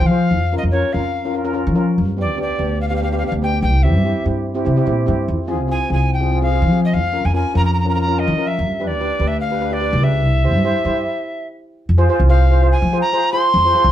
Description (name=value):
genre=calypso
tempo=145 BPM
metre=4/4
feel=straight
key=F minor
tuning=A4 = 440 Hz
part: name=mellow reedy alto recorder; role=melody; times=0.0-13.9 s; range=Db5 to C6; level=-20 LUFS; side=equal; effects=none
part: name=steel pan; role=accompaniment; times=0.0-13.9 s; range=B3 to C5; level=-22 LUFS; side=equal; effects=none
part: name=upright bass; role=bass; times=0.0-13.9 s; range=C2 to F3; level=-17 LUFS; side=equal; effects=none
room=moderate studio reverb, RT60 0.6 s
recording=heard from further back in the room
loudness=-15 LUFS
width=side -11 dB against mid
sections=0.0-11.9 A section; 11.9-13.9 B section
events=stop 11.1-11.9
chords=0.3 Bbm/F; 2.0 G; 3.6 C; 5.3 Fm; 6.9 Bbm/F; 8.6 G; 10.2 C; 11.9 Fm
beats=| 0.32 0.73 1.15 1.56 | 1.97 2.39 2.80 3.21 | 3.62 4.04 4.45 4.86 | 5.28 5.69 6.10 6.52 | 6.93 7.34 7.75 8.17 | 8.58 8.99 9.40 9.82 | 10.23 10.64 11.05 11.47 | 11.88 12.29 12.70 13.11 | 13.52